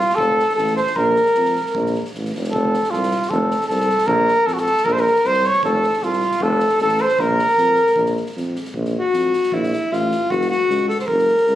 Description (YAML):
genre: balkan folk, Balkan brass band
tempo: 154 BPM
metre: 2/4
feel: straight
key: Bb hungarian minor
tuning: A4 = 437 Hz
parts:
  - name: mellow trumpet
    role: melody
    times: 0.0-8.4 s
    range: F4 to Db5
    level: -17 LUFS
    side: equal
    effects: none
  - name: clear alto saxophone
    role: second line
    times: 0.0-2.1, 4.9-11.6 s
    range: E4 to Db5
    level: -20 LUFS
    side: left 1 dB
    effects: none
  - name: soft-mallet drum kit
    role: percussion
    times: 0.0-11.5 s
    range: kick drum, snare drum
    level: -33 LUFS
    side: right 2 dB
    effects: none
  - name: mellow tuba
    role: bass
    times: 0.2-11.6 s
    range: F1 to F2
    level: -23 LUFS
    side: equal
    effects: none
room: light reverb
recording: recorded on a phone in the room, club reverb, compression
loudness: -16 LUFS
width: side -12 dB against mid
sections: 0.0-2.5 A section; 2.5-8.7 A section; 8.7-11.6 B section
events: alto saxophone solo 8.7-11.6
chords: 0.0 F; 1.0 Bb5; 2.5 F; 4.1 Bb5; 5.6 F; 7.2 Bb5; 10.3 Gb